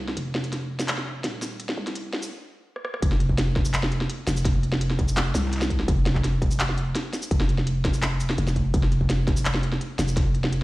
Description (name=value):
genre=half-time drum and bass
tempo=168 BPM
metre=4/4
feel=half-time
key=unclear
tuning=A4 = 441 Hz
part: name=growling 808-style bass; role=bass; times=0.0-10.6 s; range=Eb1 to C2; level=-25 LUFS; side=equal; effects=none
part: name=industrial drum kit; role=drums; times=0.1-10.6 s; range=handclaps, hi-hat, rim click, shaker, snare drum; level=-28 LUFS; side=equal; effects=none
part: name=electronic kick drum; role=drums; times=3.0-10.2 s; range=none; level=-24 LUFS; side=equal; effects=distortion
room=little or no reverb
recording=played on a big sound system in a bare room, stone room reverb, high-pass filter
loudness=-22 LUFS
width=side -19 dB against mid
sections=0.0-3.0 A section; 3.0-10.6 B section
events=build-up 0.0-3.0; stop 2.3-3.0; drum fill 2.8; drop 3.0-10.6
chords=none